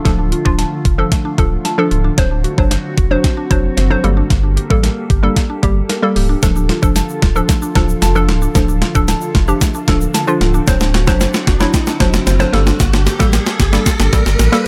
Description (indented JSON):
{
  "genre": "dance-pop",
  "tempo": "113 BPM",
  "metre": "4/4",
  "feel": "straight",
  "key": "D minor",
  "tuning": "A4 = 440 Hz",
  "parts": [
    { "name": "hollow square pluck", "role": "accompaniment", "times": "0.0-14.7 s", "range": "F3 to C5", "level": "-21 LUFS", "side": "equal", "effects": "chorus, sidechain pumping" },
    { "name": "glassy FM pad", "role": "sustained chords", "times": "0.0-14.7 s", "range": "D3 to A4", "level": "-28 LUFS", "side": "equal", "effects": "ensemble chorus, built-in reverb, sidechain pumping" },
    { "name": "impact and riser", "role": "sound effects", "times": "0.0-0.1, 9.2-14.7 s", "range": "none", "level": "-30 LUFS", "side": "equal", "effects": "none" },
    { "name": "mallet-like synth pluck", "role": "arpeggios", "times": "0.1-14.6 s", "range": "A3 to A5", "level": "-27 LUFS", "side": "equal", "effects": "chorus, sidechain pumping, delay" },
    { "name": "warm sub bass", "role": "bass", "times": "0.1-14.5 s", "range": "C#1 to A1", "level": "-18 LUFS", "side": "equal", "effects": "sidechain pumping" },
    { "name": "crisp 8-bit digital drum machine", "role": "drums", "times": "0.1-14.7 s", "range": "hi-hat, kick drum, snare drum", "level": "-17 LUFS", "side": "equal", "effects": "overdrive" },
    { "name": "egg shaker", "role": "percussion", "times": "6.4-14.7 s", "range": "none", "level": "-34 LUFS", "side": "equal", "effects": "none" }
  ],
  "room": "little or no reverb",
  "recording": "none",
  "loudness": "-14 LUFS",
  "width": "mono",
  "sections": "0.0-14.7 A section",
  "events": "build-up 0.0-14.7; drum fill 0.0-14.7; riser 9.2-14.7",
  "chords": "0.0 Dm; 2.2 D7; 4.0 Gmadd9; 6.4 Dm; 10.7 D7; 12.5 Gmadd9"
}